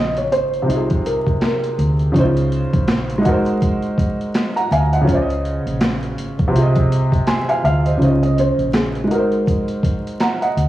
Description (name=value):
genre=lo-fi hip hop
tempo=82 BPM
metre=4/4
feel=swing 58% on 16ths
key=Db major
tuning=A4 = 441 Hz
part: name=felt-muted upright piano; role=melody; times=0.0-1.8, 8.2-9.7 s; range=Ab4 to Eb5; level=-21 LUFS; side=right 1 dB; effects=cassette tape, analog delay
part: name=dark upright piano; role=accompaniment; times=0.0-10.7 s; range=C3 to C6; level=-19 LUFS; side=equal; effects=cassette tape
part: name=vintage muted fingered electric bass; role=bass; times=0.0-10.7 s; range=Ab1 to D2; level=-20 LUFS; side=equal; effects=tube saturation
part: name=boom bap sampler-style drum kit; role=drums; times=0.2-10.7 s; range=handclaps, hi-hat, kick drum, snare drum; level=-20 LUFS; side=equal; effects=overdrive, cassette tape
room=light reverb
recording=home recording on cassette, vinyl crackle, small room ambience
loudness=-15 LUFS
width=side -14 dB against mid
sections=0.0-10.7 A section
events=upright piano fill 6.9-8.0; kick muted 8.0-9.5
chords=0.0 Dbadd9; 0.7 Fm7/C; 2.1 Dbmaj9; 3.2 Ab9; 6.5 Fm7/C; 8.0 Dbmaj9; 9.1 Ab9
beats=0.69 1.42 | 2.15 2.88 3.61 4.34 | 5.08 5.81 6.54 7.27 | 8.00 8.73 9.47 10.20